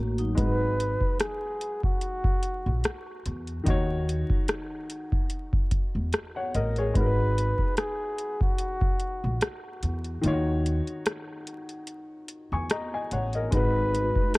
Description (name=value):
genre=lo-fi hip hop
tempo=73 BPM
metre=4/4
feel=swing 56% on 16ths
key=G# minor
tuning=A4 = 440 Hz
part: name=vibraphone with soft mallets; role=second line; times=0.0-0.6 s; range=F#3 to F#4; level=-34 LUFS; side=left 1 dB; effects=low-pass filter, tape echo
part: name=warm upright piano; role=accompaniment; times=0.0-14.4 s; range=D#3 to C#6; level=-32 LUFS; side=left 2 dB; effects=cassette tape, low-pass filter
part: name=upright bass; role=bass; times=0.0-14.1 s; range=G#1 to E2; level=-27 LUFS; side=equal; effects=none
part: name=electro analog drum machine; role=drums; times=0.2-14.4 s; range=hi-hat, kick drum, rim click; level=-27 LUFS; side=equal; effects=none
part: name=mellow flugelhorn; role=melody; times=0.4-14.4 s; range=F#4 to B4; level=-31 LUFS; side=equal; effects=low-pass filter, tape echo
part: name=granular cloud pad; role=sustained chords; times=13.9-14.4 s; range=G#3 to B4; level=-35 LUFS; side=left 1 dB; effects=built-in reverb, low-pass filter
room=light reverb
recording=vinyl crackle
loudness=-25 LUFS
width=side -23 dB against mid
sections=0.0-13.5 A section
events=break 0.0-0.4, 10.2-13.5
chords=0.4 G#m7; 3.7 D#m7; 7.0 G#m7; 10.2 D#m7; 13.5 G#m7